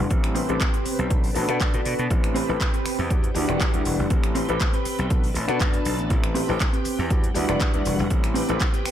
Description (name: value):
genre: filtered disco house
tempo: 120 BPM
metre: 4/4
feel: straight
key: A dorian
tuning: A4 = 442 Hz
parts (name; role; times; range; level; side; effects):
- dark concert grand piano; accompaniment; 0.0-8.7 s; G3 to F#5; -28 LUFS; left 2 dB; phaser, sidechain pumping, low-pass filter
- string machine, full ensemble; sustained chords; 0.0-8.9 s; G3 to A5; -31 LUFS; left 1 dB; ensemble chorus, vintage 12-bit sampler grit, sidechain pumping, low-pass filter
- gritty slap bass; bass; 0.0-8.9 s; E1 to B2; -27 LUFS; equal; overdrive, sidechain pumping, low-pass filter
- electronic kick drum; drums; 0.1-8.7 s; none; -23 LUFS; equal; none
- house drum kit; drums; 0.1-8.9 s; finger snaps, handclaps, hi-hat; -30 LUFS; equal; none
- maracas; percussion; 0.1-8.9 s; none; -44 LUFS; left 4 dB; none
- mellow electric guitar; riff; 0.3-8.9 s; C4 to G5; -30 LUFS; right 3 dB; warbly pitch drift, sidechain pumping, low-pass filter
room: digital ambience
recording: none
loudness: -20 LUFS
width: side -10 dB against mid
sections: 0.0-8.9 A section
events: clean electric guitar fill 8.6-8.9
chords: 0.1 Am9; 1.1 Bm7; 2.1 Am9; 3.1 Em9; 4.1 Am9; 5.1 Bm7; 6.1 Am9; 7.1 Em9; 8.1 Am9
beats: | 0.11 0.61 1.11 1.61 | 2.11 2.61 3.11 3.61 | 4.11 4.61 5.11 5.61 | 6.11 6.61 7.11 7.61 | 8.11 8.61